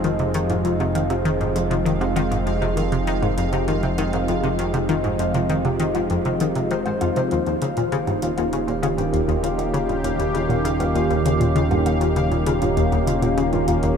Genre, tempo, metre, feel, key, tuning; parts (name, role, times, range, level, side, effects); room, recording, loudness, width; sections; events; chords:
ambient, sequencer-driven space music; 99 BPM; 4/4; straight; F minor; A4 = 441 Hz
sweeping resonant pad; sustained chords; 0.0-14.0 s; Eb3 to G4; -23 LUFS; right 1 dB; chorus, phaser
concert harp; arpeggios; 0.0-14.0 s; F4 to F5; -27 LUFS; left 5 dB; auto-pan, low-pass filter, ping-pong delay
analog pluck; riff; 0.0-13.9 s; Eb2 to Eb3; -23 LUFS; left 1 dB; chorus, ping-pong delay
fat analog bass; bass; 0.0-14.0 s; Eb1 to F1; -27 LUFS; right 1 dB
electronic hi-hat and woodblock; percussion; 0.0-14.0 s; -37 LUFS; right 1 dB; ping-pong delay
pulsing gated texture; texture; 0.0-14.0 s; F5; -35 LUFS; right 2 dB; chorus, built-in reverb
moderate huge ambient reverb, RT60 8.6 s; in a vast, echoing space; -19 LUFS; side -7 dB against mid
0.0-14.0 A section
fade-in on synth texture 0.0-14.0
0.0 Fm7; 7.3 Eb7